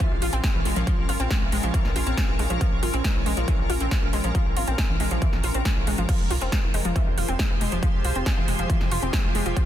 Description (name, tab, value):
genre	uplifting trance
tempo	138 BPM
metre	4/4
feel	straight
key	unclear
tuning	A4 = 440 Hz
part	shimmering ambient pad	sustained chords	0.0-9.7 s	F3 to C5	-31 LUFS	equal	chorus, built-in reverb, sidechain pumping
part	wide unison pluck	arpeggios	0.0-9.6 s	F2 to F4	-28 LUFS	left 1 dB	flanger, sidechain pumping, dub echo
part	big-room dance drum kit	drums	0.0-9.7 s	crash cymbal, hi-hat, snare drum	-31 LUFS	right 1 dB	studio reverb
part	electronic kick drum	drums	0.0-9.7 s	none	-24 LUFS	equal	studio reverb
part	tight sequencer bass	bass	0.1-9.5 s	F1 to C2	-27 LUFS	equal	sidechain pumping
room	light reverb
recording	dense, heavily limited modern master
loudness	-21 LUFS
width	side -11 dB against mid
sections	0.0-9.7 A section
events	none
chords	0.0 Bbm; 6.1 Fmadd9